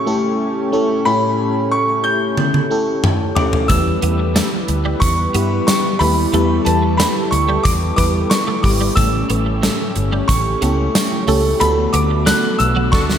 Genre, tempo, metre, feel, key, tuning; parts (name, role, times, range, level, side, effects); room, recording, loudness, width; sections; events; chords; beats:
1980s-style pop; 91 BPM; 4/4; straight; A4 = 440 Hz
clear concert grand piano; melody; 0.0-13.0 s; A5 to G6; -21 LUFS; equal; analog delay
FM electric piano; accompaniment; 0.0-13.2 s; A2 to B4; -20 LUFS; left 1 dB; chorus, phaser
warm analog pad; sustained chords; 0.0-13.2 s; D3 to B4; -23 LUFS; equal; chorus
gated 80s drum kit; drums; 2.4-13.2 s; hi-hat, kick drum, snare drum, tambourine, toms; -19 LUFS; equal
twelve-string electric guitar; riff; 3.7-12.9 s; F#3 to B3; -26 LUFS; right 2 dB; ensemble chorus
vintage muted fingered electric bass; bass; 3.7-13.2 s; G1 to G2; -19 LUFS; equal
mellow horn section; stabs; 12.9-13.0 s; D4 to A4; -25 LUFS; right 1 dB
wet cathedral reverb, RT60 5.2 s; dreamy mix soaked in reverb; -14 LUFS; side -9 dB against mid
0.0-13.2 A section
drum fill 2.4-3.7, 12.9; band accent 11.6-13.2
0.0 A7; 3.7 Em; 9.0 A7; 11.6 D6
0.40 | 1.06 1.72 2.38 3.04 | 3.70 4.36 5.01 5.67 | 6.33 6.99 7.65 8.31 | 8.97 9.63 10.29 10.95 | 11.61 12.27 12.93